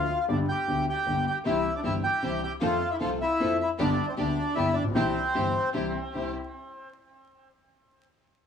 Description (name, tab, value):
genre	tango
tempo	154 BPM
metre	3/4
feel	rubato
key	C major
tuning	A4 = 438 Hz
part	bandoneon	melody	0.0-5.7 s	C4 to G5	-28 LUFS	equal	plate reverb, tape echo
part	warm concert grand piano	accompaniment	0.0-6.3 s	G1 to A4	-28 LUFS	left 2 dB	none
part	clear studio string section	stabs	1.4-6.3 s	B3 to A4	-37 LUFS	equal	none
room	wet studio reverb, RT60 0.7 s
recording	vinyl crackle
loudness	-25 LUFS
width	side -7 dB against mid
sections	0.0-6.1 A section; 6.1-7.3 B section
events	none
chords	0.3 G; 1.5 C; 2.6 F; 3.8 G; 5.0 C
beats	| 0.28 0.67 1.06 | 1.46 1.85 2.24 | 2.63 3.01 3.40 | 3.79 4.17 4.56 | 4.95 5.34 5.74 | 6.14